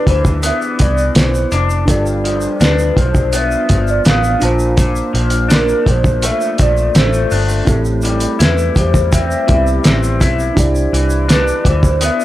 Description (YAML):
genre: indie pop, bedroom pop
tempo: 83 BPM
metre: 4/4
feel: straight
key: C major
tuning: A4 = 444 Hz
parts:
  - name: warbly nostalgic lead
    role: melody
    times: 0.0-12.2 s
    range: Bb4 to F5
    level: -20 LUFS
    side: equal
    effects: wide subtle chorus, tape echo
  - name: electric guitar through a small old amp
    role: accompaniment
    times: 0.0-12.2 s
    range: G2 to E4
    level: -19 LUFS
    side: left 3 dB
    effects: analog chorus, vibrato effect
  - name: reed electric piano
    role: accompaniment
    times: 0.0-12.2 s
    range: B3 to A5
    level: -23 LUFS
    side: right 2 dB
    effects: cassette tape
  - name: vintage muted picked electric bass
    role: bass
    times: 0.1-12.1 s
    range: F1 to E2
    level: -17 LUFS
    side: equal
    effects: none
  - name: cloth-damped thuddy drum kit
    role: drums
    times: 0.1-12.2 s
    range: hi-hat, kick drum, snare drum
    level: -14 LUFS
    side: equal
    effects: none
  - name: tube shaker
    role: percussion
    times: 0.3-12.2 s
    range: none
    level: -32 LUFS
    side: right 4 dB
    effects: none
room: small room ambience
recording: dry, gritty hardware recording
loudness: -11 LUFS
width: side -14 dB against mid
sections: 0.0-12.2 A section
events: none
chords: 0.0 Cmaj9; 1.9 G7; 4.4 Bbmaj7; 7.7 Am7; 10.6 Cmaj9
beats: 0.43 1.16 | 1.88 2.60 3.33 4.05 | 4.78 5.50 6.23 6.95 | 7.67 8.40 9.12 9.84 | 10.57 11.29 12.01